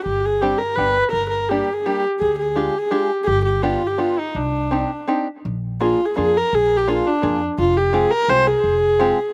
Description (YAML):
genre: musette waltz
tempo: 168 BPM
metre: 3/4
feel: rubato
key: unclear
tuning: A4 = 440 Hz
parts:
  - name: warm viola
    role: melody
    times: 0.0-9.3 s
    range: D4 to C5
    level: -20 LUFS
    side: equal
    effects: none
  - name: upright bass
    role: bass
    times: 0.1-9.1 s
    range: F1 to F2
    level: -28 LUFS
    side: equal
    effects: none
  - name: open-back banjo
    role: accompaniment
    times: 0.4-9.2 s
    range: G3 to Ab4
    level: -24 LUFS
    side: equal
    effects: none
room: little or no reverb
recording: recorded outdoors, with no room sound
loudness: -19 LUFS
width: mono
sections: 0.0-5.4 A section; 5.4-9.3 B section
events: none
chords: 0.1 Gsus4; 0.8 G; 1.1 Gm; 2.2 Ddim; 3.3 G7; 4.3 Cmadd9; 5.4 Bb7; 7.6 Fmadd9